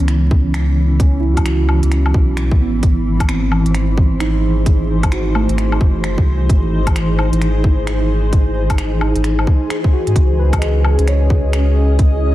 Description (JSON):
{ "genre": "future garage", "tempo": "131 BPM", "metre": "4/4", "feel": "swing 62% on 16ths", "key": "C# minor", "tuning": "A4 = 440 Hz", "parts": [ { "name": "muted felt-like synth keys", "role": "accompaniment", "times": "0.0-12.3 s", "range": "A3 to D#5", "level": "-23 LUFS", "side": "right 2 dB", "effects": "chorus, phaser, sidechain pumping, analog delay" }, { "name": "granular cloud pad", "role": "sustained chords", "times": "0.0-12.3 s", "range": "C#3 to D#5", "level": "-20 LUFS", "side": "equal", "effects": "built-in reverb, sidechain pumping" }, { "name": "warm sub bass", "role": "bass", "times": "0.0-12.3 s", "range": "F#1 to G#2", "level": "-16 LUFS", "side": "equal", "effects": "sidechain pumping" }, { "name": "organic electronic drum kit", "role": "drums", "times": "0.0-12.1 s", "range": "finger snaps, hi-hat, woodblock", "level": "-26 LUFS", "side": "left 2 dB", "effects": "soft clipping on snare" }, { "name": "electronic kick drum", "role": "drums", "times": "0.3-12.1 s", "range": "none", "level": "-14 LUFS", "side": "equal", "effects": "none" } ], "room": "digital ambience", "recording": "dense, heavily limited modern master, vinyl crackle", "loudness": "-13 LUFS", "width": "side -15 dB against mid", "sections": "0.0-12.3 A section", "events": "none", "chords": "0.0 C#m9; 2.8 G#7b9; 10.2 C#m9", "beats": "0.08 0.54 | 1.00 1.46 1.92 2.37 | 2.83 3.29 3.75 4.21 | 4.66 5.12 5.58 6.04 | 6.50 6.95 7.41 7.87 | 8.33 8.79 9.24 9.70 | 10.16 10.62 11.07 11.53 | 11.99" }